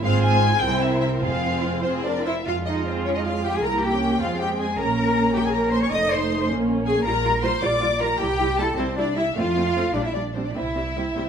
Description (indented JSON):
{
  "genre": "quick classical-period movement for string orchestra",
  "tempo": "96-107 BPM (dotted quarters)",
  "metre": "6/8",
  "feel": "rubato",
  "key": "F minor",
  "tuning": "A4 = 439 Hz",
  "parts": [
    { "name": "rich studio violin section", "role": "melody", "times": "0.0-11.2 s", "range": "C5 to Eb6", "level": "-29 LUFS", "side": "left 4 dB", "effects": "none" },
    { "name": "warm studio violin section", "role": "second line", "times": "0.0-11.3 s", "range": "Ab4 to Eb6", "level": "-29 LUFS", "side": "left 3 dB", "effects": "none" },
    { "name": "warm studio viola section", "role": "accompaniment", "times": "0.0-11.2 s", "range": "G3 to F4", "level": "-25 LUFS", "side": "right 2 dB", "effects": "none" },
    { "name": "rich studio cello section", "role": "bass", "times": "0.0-11.3 s", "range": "F2 to Eb5", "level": "-24 LUFS", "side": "right 1 dB", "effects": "none" },
    { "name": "rich studio double bass section", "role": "bass", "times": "0.0-11.3 s", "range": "F1 to F2", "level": "-29 LUFS", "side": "right 3 dB", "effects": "none" }
  ],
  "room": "moderate recital hall reverb, RT60 1.4 s",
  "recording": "minimal, uncompressed stereo recording",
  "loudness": "-20 LUFS",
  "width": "side -7 dB against mid",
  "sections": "0.0-2.5 A section; 2.5-11.3 A section",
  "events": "none",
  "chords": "0.0 Fm/Ab; 0.6 C7; 1.2 Fm; 3.6 C7; 4.2 Fm; 4.8 Bbm; 5.9 F7; 6.5 Bbm7; 7.0 Gm7/Bb; 8.2 C; 9.4 F; 9.9 Gm/Bb; 10.5 C"
}